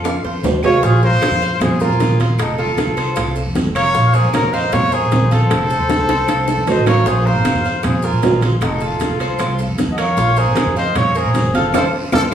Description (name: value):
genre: latin, Cuban son and guajira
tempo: 154 BPM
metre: 4/4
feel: straight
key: Bb minor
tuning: A4 = 439 Hz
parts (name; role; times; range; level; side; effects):
- clear trumpet; melody; 0.0-12.2 s; Eb4 to Eb5; -19 LUFS; left 1 dB; none
- bright reedy silver concert flute; second line; 0.0-12.3 s; Ab4 to Gb5; -25 LUFS; left 1 dB; none
- Cuban tres; arpeggios; 0.0-12.3 s; F4 to F5; -23 LUFS; right 5 dB; none
- upright bass; bass; 0.0-12.3 s; F1 to Bb2; -19 LUFS; right 1 dB; none
- claves; percussion; 0.0-12.3 s; none; -35 LUFS; left 2 dB; none
- maracas; percussion; 0.0-12.2 s; none; -40 LUFS; left 4 dB; none
- bongos; percussion; 0.1-12.2 s; none; -25 LUFS; left 2 dB; none
- congas; percussion; 0.1-12.3 s; none; -23 LUFS; equal; none
- guiro; percussion; 0.1-12.2 s; none; -36 LUFS; right 3 dB; none
- timbales; percussion; 0.1-12.2 s; none; -23 LUFS; right 4 dB; none
room: wet large studio reverb, RT60 1.2 s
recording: heard from further back in the room, small room ambience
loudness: -13 LUFS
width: side -9 dB against mid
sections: 0.8-12.3 A section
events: drum fill 0.1-0.8, 5.5-7.1, 11.7-12.3; band accent 11.7-12.3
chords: 0.0 F7; 0.8 Bbsus2; 2.4 F7; 3.9 Bbsus2; 5.5 F7; 7.1 Bbsus2; 8.6 F7; 10.2 Bbsus2; 11.7 F